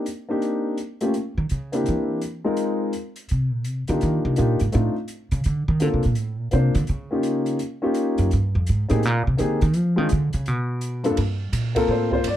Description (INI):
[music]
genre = jazz piano trio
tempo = 167 BPM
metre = 4/4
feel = swing 64% on 8ths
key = C minor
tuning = A4 = 440 Hz
[part]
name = dark upright piano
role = melody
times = 0.0-12.4 s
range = G2 to D5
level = -23 LUFS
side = left 2 dB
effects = none
[part]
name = open jazz drum kit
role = drums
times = 0.1-12.4 s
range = hi-hat, kick drum, ride cymbal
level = -36 LUFS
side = right 2 dB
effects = none
[part]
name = upright bass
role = bass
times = 1.4-12.4 s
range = F2 to F3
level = -22 LUFS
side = right 1 dB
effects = none
[sound]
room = light reverb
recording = dark, warm production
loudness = -20 LUFS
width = side -12 dB against mid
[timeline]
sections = 0.0-11.2 A section; 11.2-12.4 A section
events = upright bass solo 0.0-11.2; upright piano solo 11.2-12.4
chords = 0.0 Cm7; 1.1 N.C.; 1.9 C7; 2.6 Fm7; 4.0 Cm11; 4.7 F6; 5.4 Bbmaj7; 6.9 Eb9; 8.3 Abmaj9; 9.7 Ddim; 10.5 N.C.; 11.2 Gm11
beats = 0.06 0.42 0.78 | 1.14 1.50 1.86 2.21 | 2.57 2.93 3.29 3.65 | 4.01 4.37 4.72 5.08 | 5.44 5.80 6.16 6.52 | 6.87 7.23 7.59 7.95 | 8.31 8.67 9.02 9.38 | 9.74 10.10 10.46 10.82 | 11.18 11.53 11.89 12.25